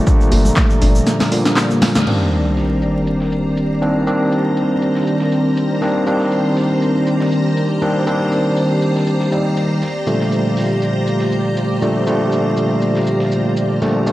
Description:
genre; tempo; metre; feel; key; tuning
deep house; 120 BPM; 4/4; swing 54% on 16ths; C dorian; A4 = 438 Hz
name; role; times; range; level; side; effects
warm analog pad; sustained chords; 0.0-14.1 s; Eb3 to Bb5; -23 LUFS; equal; chorus, sidechain pumping
soft round pluck; arpeggios; 0.0-2.1 s; A3 to D4; -23 LUFS; left 1 dB; chorus, cassette tape, sidechain pumping, tape echo
overdriven tine electric piano; stabs; 0.0-14.1 s; Bb2 to Eb4; -16 LUFS; equal; sidechain pumping, low-pass filter
dusty soul sampler-style drum kit; drums; 0.1-14.1 s; hi-hat, shaker, snare drum; -34 LUFS; equal; overdrive, high-pass filter on snare, low-pass filter on snare, sidechain pumping on perc, high-pass filter on perc, low-pass filter on perc, sidechain pumping on hats, high-pass filter on hats, low-pass filter on hats
electronic kick drum; drums; 0.1-0.7 s; none; -15 LUFS; equal; none
egg shaker; percussion; 0.1-2.0 s; none; -33 LUFS; right 1 dB; none
warm sub bass; bass; 0.3-1.0 s; G1; -14 LUFS; equal; sidechain pumping
punchy analog drum machine; drums; 0.3-2.2 s; crash cymbal, handclaps, hi-hat, snare drum; -21 LUFS; equal; none
bongos and congas; percussion; 0.3-2.0 s; none; -25 LUFS; left 1 dB; none
sub drop; sound effects; 2.1-4.1 s; none; -23 LUFS; equal; none
string machine, violins; texture; 2.1-14.1 s; C5 to Bb5; -28 LUFS; equal; ensemble chorus
warbly tape-like pad; texture; 3.4-14.1 s; C4 to D5; -25 LUFS; right 1 dB; chorus, built-in reverb, sidechain pumping
room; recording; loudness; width
moderate plate reverb, RT60 2.6 s; dark, warm production, vinyl crackle; -14 LUFS; side -16 dB against mid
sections
0.0-2.1 A section; 2.1-14.1 B section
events
kick drops out 1.1-2.1; drum fill 1.1-2.1; band accent 1.9; impact 2.1-4.1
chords
0.0 Gm9; 2.1 Cm9; 9.8 Gm9

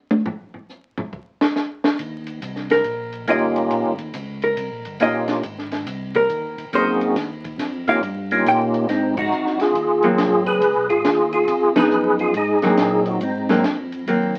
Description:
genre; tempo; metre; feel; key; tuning
soul jazz organ trio; 139 BPM; 4/4; swing 65% on 8ths; Ab mixolydian; A4 = 440 Hz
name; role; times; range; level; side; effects
compact cocktail drum kit; drums; 0.1-14.4 s; crash cymbal, hi-hat, kick drum, ride cymbal, snare drum, toms; -28 LUFS; equal; none
tonewheel organ; bass; 2.0-14.4 s; Gb1 to Bb2; -33 LUFS; equal; overdrive, chorus vibrato, stopped rotary speaker
hollow-body jazz guitar; accompaniment; 2.7-14.3 s; F3 to G5; -22 LUFS; equal; none
percussive tonewheel organ; melody; 3.3-13.6 s; Bb3 to Cb5; -21 LUFS; equal; slow rotary speaker, chorus vibrato
room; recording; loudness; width
wet small room reverb, RT60 0.5 s; very old 78 rpm record, vinyl crackle; -20 LUFS; mono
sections
0.0-8.9 A section; 8.9-14.4 B section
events
hollow-body jazz guitar solo 0.0-8.9; drum solo 0.0-2.0; band accent 9.1, 11.7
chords
0.0 N.C.; 2.0 Eb9; 5.4 Ab9; 7.2 Eb9; 8.9 Ab9; 10.6 Db9; 12.3 Ab9

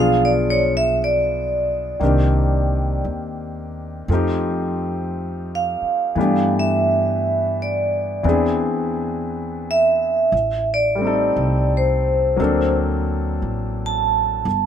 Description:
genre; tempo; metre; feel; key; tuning
jazz ballad; 58 BPM; 4/4; swing 66% on 8ths; unclear; A4 = 440 Hz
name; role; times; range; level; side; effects
vibraphone with medium hard mallets; melody; 0.0-14.7 s; C5 to A5; -19 LUFS; right 2 dB; none
clear grand piano; accompaniment; 0.0-14.5 s; Eb3 to A4; -23 LUFS; left 3 dB; none
upright bass; bass; 0.0-14.7 s; G1 to G2; -23 LUFS; right 1 dB; none
room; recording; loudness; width
light reverb; minimal, uncompressed stereo recording; -17 LUFS; side -9 dB against mid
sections
0.0-14.7 A section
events
vibraphone solo 0.0-14.7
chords
0.0 Bdim7; 2.0 Cm7; 4.1 F9; 6.2 G69; 8.2 E7b13; 10.3 Am7b5; 12.4 D7b13

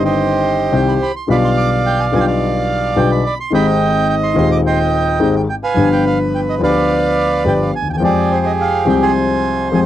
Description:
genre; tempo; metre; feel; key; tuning
tango; 107 BPM; 4/4; rubato; unclear; A4 = 444 Hz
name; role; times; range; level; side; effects
bandoneon; melody; 0.0-9.9 s; G4 to D6; -16 LUFS; right 4 dB; none
warm concert grand piano; accompaniment; 0.0-9.9 s; Eb1 to G5; -15 LUFS; left 3 dB; none
room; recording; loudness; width
light reverb; dry, close 1970s-style studio recording; -13 LUFS; side -12 dB against mid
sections
0.0-9.9 A section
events
none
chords
0.0 Cm; 1.3 G7/B; 3.5 Abmaj7; 5.8 G7; 8.0 Fmadd9

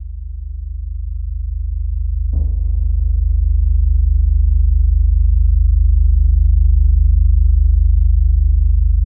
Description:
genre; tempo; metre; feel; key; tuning
dark ambient drone; free time; none; none; unclear; A4 = 444 Hz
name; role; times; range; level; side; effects
deep rumbling drone; drone; 0.0-9.1 s; G1 to D2; -13 LUFS; equal; built-in reverb, lush chorus
taiko ensemble; percussion; 2.3-2.5 s; none; -29 LUFS; equal; low-pass filter on perc
room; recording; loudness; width
little or no reverb; dark, warm production; -13 LUFS; side -29 dB against mid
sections
0.0-9.1 A section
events
fade-in on drum 0.0-9.1; filter sweep on synth drone 0.0-9.1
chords
0.0 G5

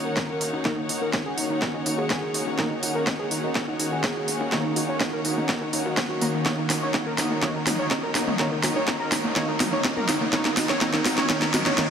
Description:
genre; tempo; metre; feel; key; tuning
melodic techno; 124 BPM; 4/4; straight; Eb minor; A4 = 438 Hz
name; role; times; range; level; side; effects
fat analog lead; melody; 0.0-11.9 s; Eb4 to Db5; -29 LUFS; equal; sidechain pumping, tape echo
lush unison pad; sustained chords; 0.0-11.9 s; Eb3 to Gb4; -32 LUFS; equal; chorus, sidechain pumping
warbly dusty pluck; arpeggios; 0.0-11.9 s; Bb3 to Gb5; -34 LUFS; right 1 dB; none
tight sequencer bass; bass; 0.0-11.7 s; Eb1 to Eb2; -43 LUFS; equal; none
rich studio string section; texture; 0.0-11.9 s; Eb4 to Gb5; -35 LUFS; left 2 dB; sidechain pumping
electronic kick drum; drums; 0.2-11.9 s; none; -31 LUFS; equal; high-pass filter on kick, high-pass filter on room
techno drum kit; drums; 0.2-11.9 s; hi-hat, snare drum, toms; -26 LUFS; equal; sidechain pumping on toms, sidechain pumping on hats
synth brass stab; stabs; 0.7-11.9 s; Eb3 to Eb4; -31 LUFS; right 1 dB; chorus, cassette tape, sidechain pumping, diffuse ambient delay
riser; sound effects; 8.1-11.9 s; none; -36 LUFS; equal; none
room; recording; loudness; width
wet cathedral reverb, RT60 6.1 s; dreamy mix soaked in reverb; -22 LUFS; side -7 dB against mid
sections
0.0-11.9 A section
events
build-up 0.0-11.9; drum fill 0.0-11.9; filter sweep on synth stab 0.0-11.9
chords
0.0 Ebm7

